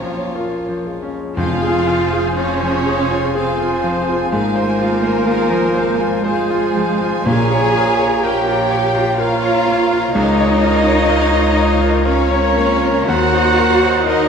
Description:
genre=classical, romantic movement for piano and orchestra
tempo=62 BPM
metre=3/4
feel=rubato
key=F minor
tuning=A4 = 439 Hz
part: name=bright concert grand piano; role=melody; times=0.0-14.3 s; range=Db2 to C6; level=-20 LUFS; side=left 2 dB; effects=none
part: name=warm symphonic violin section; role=melody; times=0.0-14.3 s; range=Ab4 to Bb5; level=-26 LUFS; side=left 4 dB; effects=none
part: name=hollow concert flute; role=second line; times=0.0-14.3 s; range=F5 to Bb5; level=-26 LUFS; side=left 2 dB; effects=none
part: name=warm studio violin section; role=second line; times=0.0-14.3 s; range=F4 to Bb5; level=-27 LUFS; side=left 2 dB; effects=none
part: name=dark bassoon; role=accompaniment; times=0.0-14.3 s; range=F3 to C4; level=-25 LUFS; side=right 6 dB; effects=none
part: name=warm symphonic viola section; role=accompaniment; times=0.0-14.3 s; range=Ab3 to Db5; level=-25 LUFS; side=right 1 dB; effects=none
part: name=mellow French horn section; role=sustained chords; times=0.0-14.3 s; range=Db4 to F5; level=-25 LUFS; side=left 5 dB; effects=none
part: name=clear symphonic double bass section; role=bass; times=0.0-14.3 s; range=F1 to Eb2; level=-24 LUFS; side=right 2 dB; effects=none
part: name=warm symphonic cello section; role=bass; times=0.0-14.3 s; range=Ab3 to Ab4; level=-21 LUFS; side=right 2 dB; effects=none
part: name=clear oboe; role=second line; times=1.4-14.3 s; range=C5 to Db5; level=-28 LUFS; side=right 3 dB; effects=none
part: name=dark trumpet section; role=stabs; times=1.4-14.3 s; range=Ab4 to Ab5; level=-23 LUFS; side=right 3 dB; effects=none
part: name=timpani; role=percussion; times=1.4-8.7 s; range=F2 to Bb2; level=-24 LUFS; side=equal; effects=none
room=moderate scoring stage reverb, RT60 1.8 s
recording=minimal, uncompressed stereo recording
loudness=-13 LUFS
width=side -6 dB against mid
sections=0.0-1.4 A section; 1.4-14.3 B section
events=none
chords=0.0 Bbm; 1.4 Fm; 4.3 Fm/Ab; 7.3 Bbm; 10.1 Bbm/Db; 13.1 Cm7b5/Eb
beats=0.36 | 1.36 2.37 3.34 | 4.32 5.27 6.24 | 7.26 8.23 9.18 | 10.14 11.09 12.05 | 13.09 14.07

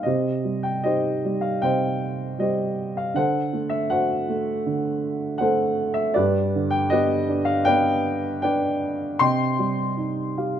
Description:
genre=classical, lyrical solo piano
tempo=79 BPM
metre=4/4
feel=rubato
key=C harmonic minor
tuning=A4 = 439 Hz
part: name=dark upright piano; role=solo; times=0.0-10.6 s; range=G2 to C6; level=-21 LUFS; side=equal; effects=none
room=light reverb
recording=close, detailed microphones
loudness=-21 LUFS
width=side -9 dB against mid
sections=0.1-10.6 A section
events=upright piano fill 10.0-10.6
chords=0.1 Cm; 3.1 D7; 6.2 G; 9.2 Cm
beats=| 0.05 0.84 1.63 2.40 | 3.15 3.90 4.66 5.40 | 6.16 6.91 7.67 8.44 | 9.20 9.98

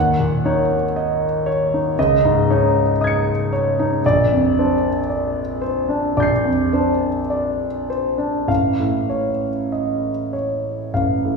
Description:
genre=classical, impressionist solo piano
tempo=48-61 BPM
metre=4/4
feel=rubato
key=unclear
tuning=A4 = 439 Hz
part: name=warm concert grand piano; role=solo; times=0.0-11.4 s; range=A1 to Db7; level=-17 LUFS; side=equal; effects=none
room=wet recital hall reverb, RT60 1.6 s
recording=recorded in a church or concert hall, small room ambience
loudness=-17 LUFS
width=side -4 dB against mid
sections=0.0-11.4 A section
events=none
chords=0.0 Ebm7; 2.0 Dbsus2; 4.0 Bb69; 8.5 Aaug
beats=0.94 1.97 2.99 | 4.03 5.08 6.15 7.29 | 8.49 9.72 10.96

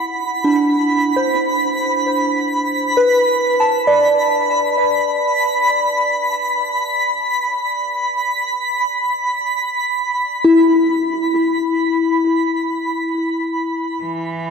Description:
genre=ambient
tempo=free time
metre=none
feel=none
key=unclear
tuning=A4 = 440 Hz
part: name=soft synth bell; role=arpeggios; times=0.0-14.5 s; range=D4 to A5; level=-16 LUFS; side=left 1 dB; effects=chorus, phaser, tape echo
part: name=twinkling granular texture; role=texture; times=0.0-13.4 s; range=B5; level=-19 LUFS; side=right 1 dB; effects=built-in reverb
part: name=rich cello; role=melody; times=14.0-14.5 s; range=E3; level=-26 LUFS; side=right 3 dB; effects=tape echo
room=wet cathedral reverb, RT60 6.0 s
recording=none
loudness=-15 LUFS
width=side -5 dB against mid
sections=0.0-13.4 A section; 13.4-14.5 B section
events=fade-in on synth bell 0.0-13.4; fade-in on synth texture 0.0-13.4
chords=0.0 D7; 3.8 E5/D; 13.4 N.C.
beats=free time

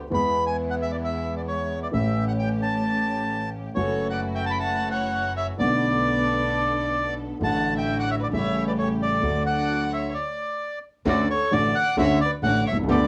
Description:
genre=tango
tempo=132 BPM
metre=4/4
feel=rubato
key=D major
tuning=A4 = 440 Hz
part: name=warm grand piano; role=accompaniment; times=0.0-13.1 s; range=A1 to G#4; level=-28 LUFS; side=equal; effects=cassette tape
part: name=rich symphonic string section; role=stabs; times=0.0-13.1 s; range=G#3 to A4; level=-34 LUFS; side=equal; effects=cassette tape
part: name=bandoneon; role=melody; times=0.1-13.1 s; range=C#5 to B5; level=-28 LUFS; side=equal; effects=cassette tape
part: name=upright bass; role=bass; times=0.1-13.1 s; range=F#1 to E2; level=-34 LUFS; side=equal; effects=none
part: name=rich violin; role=second line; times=3.8-13.1 s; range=A4 to G5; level=-36 LUFS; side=equal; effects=cassette tape
room=moderate studio reverb, RT60 0.5 s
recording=home recording on cassette, small room ambience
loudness=-24 LUFS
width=mono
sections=0.0-11.1 A section; 11.1-13.1 B section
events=stop 10.1-11.1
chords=0.1 E; 1.9 A7; 3.8 F#m7; 5.6 Bm7; 7.4 D/A; 8.3 A7; 9.2 D; 11.1 Dmaj7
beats=| 0.11 0.57 1.02 1.48 | 1.93 2.39 2.84 3.30 | 3.76 4.22 4.68 5.13 | 5.59 6.04 6.50 6.95 | 7.41 7.86 8.31 8.77 | 9.22 9.68 10.14 10.60 | 11.06 11.52 11.97 12.43 | 12.88

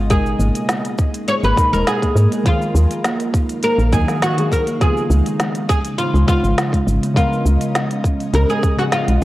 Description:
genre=organic downtempo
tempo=102 BPM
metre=4/4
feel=straight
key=unclear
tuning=A4 = 439 Hz
part: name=deep mellow chord stab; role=accompaniment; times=0.0-9.2 s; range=B2 to A#4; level=-26 LUFS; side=left 2 dB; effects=chorus, sidechain pumping, tape echo
part: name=ethereal airy pad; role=sustained chords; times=0.0-9.2 s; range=C#3 to E#5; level=-26 LUFS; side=equal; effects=ensemble chorus, built-in reverb, sidechain pumping
part: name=kalimba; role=arpeggios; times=0.0-9.2 s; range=E#3 to D#4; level=-24 LUFS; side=right 1 dB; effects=tape echo
part: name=woody FM bass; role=bass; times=0.0-9.2 s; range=D#1 to G#2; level=-15 LUFS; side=equal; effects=sidechain pumping
part: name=oud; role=melody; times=0.1-9.2 s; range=E#4 to C#5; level=-21 LUFS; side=equal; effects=tape echo
part: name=electronic kick drum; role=drums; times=0.1-8.8 s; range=none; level=-18 LUFS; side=equal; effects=none
part: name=organic electronic drum kit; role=drums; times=0.1-9.2 s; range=hi-hat, shaker, snare drum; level=-24 LUFS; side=equal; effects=none
room=light reverb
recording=worn, warbling old tape, cassette tape, warbly pitch drift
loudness=-15 LUFS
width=side -16 dB against mid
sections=0.0-9.2 A section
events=none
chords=0.1 G#madd9; 2.5 D#madd9; 4.8 C#7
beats=| 0.10 0.69 1.28 1.87 | 2.46 3.05 3.63 4.22 | 4.81 5.40 5.99 6.58 | 7.16 7.75 8.34 8.93

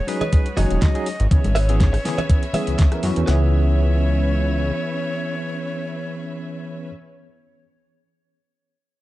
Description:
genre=nu-disco, nu disco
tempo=122 BPM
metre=4/4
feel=swing 53% on 16ths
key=C# minor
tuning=A4 = 440 Hz
part: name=breathy bright jazz flute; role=melody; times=0.0-6.9 s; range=B4 to D#5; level=-31 LUFS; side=left 1 dB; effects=tape echo
part: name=bright studio string section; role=sustained chords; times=0.0-6.9 s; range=G#3 to E5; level=-34 LUFS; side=left 1 dB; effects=sidechain pumping
part: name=barky tine electric piano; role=accompaniment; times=0.1-6.9 s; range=E3 to A#4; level=-26 LUFS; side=equal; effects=fast stereo tremolo, sidechain pumping
part: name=direct-recorded clean electric guitar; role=riff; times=0.1-6.9 s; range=F#4 to E5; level=-30 LUFS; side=right 1 dB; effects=lush chorus
part: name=pop drum kit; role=drums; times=0.1-3.3 s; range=hi-hat, rim click, snare drum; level=-29 LUFS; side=equal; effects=none
part: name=congas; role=percussion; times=0.2-2.6 s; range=none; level=-29 LUFS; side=left 2 dB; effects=none
part: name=clean 12-bit digital drum machine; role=drums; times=0.3-3.4 s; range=handclaps, kick drum, snare drum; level=-17 LUFS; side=equal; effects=none
part: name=fat analog bass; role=bass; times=0.6-4.7 s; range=D#1 to F#2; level=-18 LUFS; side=equal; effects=none
room=light reverb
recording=dark, warm production, nothing above 10.6 kHz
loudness=-18 LUFS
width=side -16 dB against mid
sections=0.0-3.3 A section; 3.3-7.2 B section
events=drop 0.0-3.3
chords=0.0 G#7sus4; 1.3 C#m7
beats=0.33 0.82 | 1.31 1.81 2.30 2.79 | 3.28 3.77 4.26 4.76 | 5.25 5.74 6.23 6.72

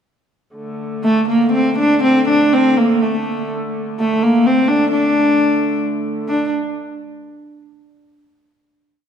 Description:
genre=medieval dance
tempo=121-138 BPM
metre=3/4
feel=straight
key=unclear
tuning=A4 = 440 Hz
part: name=dark hurdy-gurdy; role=drone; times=0.6-6.3 s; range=D3 to A3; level=-23 LUFS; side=equal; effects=none
part: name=warm viola da gamba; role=melody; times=1.0-6.5 s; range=A3 to D4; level=-14 LUFS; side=equal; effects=none
room=moderate concert hall reverb, RT60 1.8 s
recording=none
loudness=-14 LUFS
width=side -8 dB against mid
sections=0.5-6.3 A section; 6.3-7.6 final note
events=speeding up 0.5-7.6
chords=none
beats=| 0.54 1.04 1.53 | 2.02 2.51 3.00 | 3.48 3.96 4.43 | 4.90 5.37 5.83 | 6.28

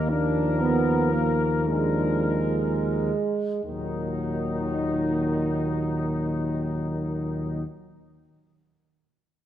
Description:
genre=classical, hymn-like piece for brass band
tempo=29-42 BPM (dotted quarters)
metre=6/8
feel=rubato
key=Eb minor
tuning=A4 = 439 Hz
part: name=mellow trumpet section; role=melody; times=0.0-7.6 s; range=Eb4 to Bb4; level=-32 LUFS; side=left 4 dB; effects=none
part: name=mellow French horn section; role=second line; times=0.0-7.6 s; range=Eb3 to D4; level=-28 LUFS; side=right 4 dB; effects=none
part: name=warm euphonium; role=accompaniment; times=0.0-7.6 s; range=Gb3 to Eb4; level=-33 LUFS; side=left 3 dB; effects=none
part: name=mellow tuba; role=bass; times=0.0-7.6 s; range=Eb2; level=-27 LUFS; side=left 1 dB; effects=none
part: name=mellow trombone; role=accompaniment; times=0.1-7.6 s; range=Bb2 to F3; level=-34 LUFS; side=right 2 dB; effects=none
room=moderate scoring stage reverb, RT60 1.9 s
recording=none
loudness=-23 LUFS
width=side -11 dB against mid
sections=0.0-3.6 A section; 3.6-7.6 B section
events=slowing down 0.0-3.6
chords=0.1 Bb5/Eb; 3.6 Ebm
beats=| 0.09 1.68 | 3.65 5.62

